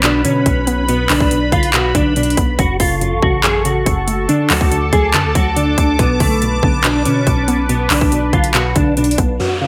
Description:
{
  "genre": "hip hop, trap",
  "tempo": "141 BPM",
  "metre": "4/4",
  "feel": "half-time",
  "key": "unclear",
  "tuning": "A4 = 440 Hz",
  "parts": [
    { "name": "mellow electric guitar", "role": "melody", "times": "0.0-9.7 s", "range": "A3 to A4", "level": "-20 LUFS", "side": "equal", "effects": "ensemble chorus, low-pass filter, diffuse ambient delay" },
    { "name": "warbly dusty pluck", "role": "accompaniment", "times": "0.0-9.7 s", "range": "F#2 to D4", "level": "-23 LUFS", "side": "equal", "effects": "chorus, low-pass filter" },
    { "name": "sweeping resonant pad", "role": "sustained chords", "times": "0.0-9.7 s", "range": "F#3 to D6", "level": "-24 LUFS", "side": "equal", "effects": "chorus, low-pass filter" },
    { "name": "long sustained 808-style bass", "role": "bass", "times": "0.0-9.4 s", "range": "F#1 to B2", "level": "-23 LUFS", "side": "equal", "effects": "none" },
    { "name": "trap drum kit", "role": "drums", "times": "0.0-9.3 s", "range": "handclaps, hi-hat, kick drum", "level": "-19 LUFS", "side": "equal", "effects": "overdrive" },
    { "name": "downlifter", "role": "sound effects", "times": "9.4-9.7 s", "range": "none", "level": "-24 LUFS", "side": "equal", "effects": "none" }
  ],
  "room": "moderate plate reverb, RT60 1.0 s",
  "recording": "dreamy mix soaked in reverb",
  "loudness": "-15 LUFS",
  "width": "mono",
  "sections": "0.0-9.4 A section",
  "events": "none",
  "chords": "0.0 Bm; 2.6 F#m; 4.3 D; 6.0 Bm"
}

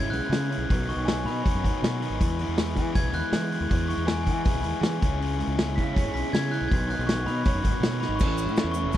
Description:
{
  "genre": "indie rock",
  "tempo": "160 BPM",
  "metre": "4/4",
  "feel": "straight",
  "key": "E major",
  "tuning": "A4 = 440 Hz",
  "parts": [
    { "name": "glockenspiel with soft plastic mallets", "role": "melody", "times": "0.0-9.0 s", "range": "G#5 to B6", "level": "-32 LUFS", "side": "left 2 dB", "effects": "slapback echo" },
    { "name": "electric guitar through a small old amp", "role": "riff", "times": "0.0-9.0 s", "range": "E2 to C#5", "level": "-34 LUFS", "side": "right 10 dB", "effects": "ensemble chorus, slapback echo" },
    { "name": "fuzz guitar", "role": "riff", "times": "0.0-9.0 s", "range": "A2 to E4", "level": "-32 LUFS", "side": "left 7 dB", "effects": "distortion" },
    { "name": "growling fingered electric bass", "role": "bass", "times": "0.0-9.0 s", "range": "F#1 to E3", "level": "-30 LUFS", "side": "equal", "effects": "overdrive" },
    { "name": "vintage drum kit", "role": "drums", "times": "0.1-9.0 s", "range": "crash cymbal, hi-hat, kick drum, snare drum", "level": "-26 LUFS", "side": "equal", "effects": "none" },
    { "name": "tube shaker", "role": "percussion", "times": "8.2-9.0 s", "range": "none", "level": "-45 LUFS", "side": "right 15 dB", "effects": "none" }
  ],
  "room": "little or no reverb",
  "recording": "none",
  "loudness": "-23 LUFS",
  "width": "side -12 dB against mid",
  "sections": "0.0-8.2 A section",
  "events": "glockenspiel solo 0.0-8.2; drum fill 8.0",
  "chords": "0.0 C#m7; 0.7 Badd9; 2.2 E; 5.0 C#m7; 6.7 Badd9; 8.2 A"
}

